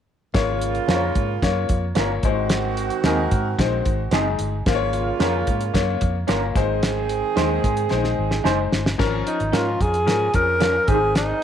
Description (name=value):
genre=uptempo 1960s-style soul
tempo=111 BPM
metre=4/4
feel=straight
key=unclear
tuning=A4 = 443 Hz
part: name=mellow saxophone section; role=second line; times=0.3-8.7 s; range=Db3 to Ab4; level=-26 LUFS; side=right 9 dB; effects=none
part: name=clear concert grand piano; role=accompaniment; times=0.3-11.4 s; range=Eb3 to Db5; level=-25 LUFS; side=left 10 dB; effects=none
part: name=vintage muted fingered electric bass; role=bass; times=0.3-11.3 s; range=Gb1 to Ab2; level=-25 LUFS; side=equal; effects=none
part: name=cloth-damped thuddy drum kit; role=drums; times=0.3-11.3 s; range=crash cymbal, hi-hat, kick drum, snare drum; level=-23 LUFS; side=equal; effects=none
part: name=electric guitar through a small old amp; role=stabs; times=0.9-11.0 s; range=C4 to C5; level=-27 LUFS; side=right 9 dB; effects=tremolo
part: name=breathy tenor saxophone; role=melody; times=9.3-11.4 s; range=Eb4 to Bb4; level=-20 LUFS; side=equal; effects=tape echo
room=moderate spring reverb, RT60 1.3 s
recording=1960s-style stereo with parts hard left and right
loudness=-18 LUFS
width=side -9 dB against mid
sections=0.3-9.0 A section; 9.0-11.4 B section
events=drum fill 7.9-9.0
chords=0.3 Bbm/Ab; 2.2 Ab; 4.7 Bbm/Ab; 6.6 Ab; 9.0 Bbm/Ab; 10.9 Ab